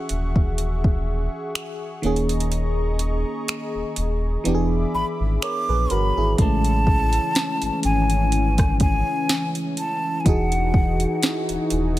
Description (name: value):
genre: contemporary R&B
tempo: 62 BPM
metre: 4/4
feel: swing 54% on 16ths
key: unclear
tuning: A4 = 443 Hz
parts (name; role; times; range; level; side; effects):
- FM electric piano; accompaniment; 0.0-12.0 s; C#3 to C#5; -27 LUFS; right 1 dB; chorus
- warm analog pad; sustained chords; 0.0-12.0 s; E3 to D6; -28 LUFS; left 2 dB; chorus
- sub bass with octave; bass; 0.1-12.0 s; D#1 to A#1; -23 LUFS; equal; none
- smooth R&B drum kit; drums; 0.1-12.0 s; finger snaps, hi-hat, kick drum, rim click, snare drum; -22 LUFS; equal; none
- breathy hollow jazz flute; melody; 4.9-11.2 s; F#5 to D6; -25 LUFS; equal; ping-pong delay
room: little or no reverb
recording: none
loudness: -19 LUFS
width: side -15 dB against mid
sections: 0.0-6.4 A section; 6.4-12.0 B section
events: kick muted 2.5-6.4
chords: 0.0 E69; 2.0 D#7sus4; 4.5 E7; 6.4 Amaj7; 10.3 Emaj9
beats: 0.58 1.55 | 2.52 3.48 4.45 5.42 | 6.39 7.35 8.32 9.29 | 10.26 11.22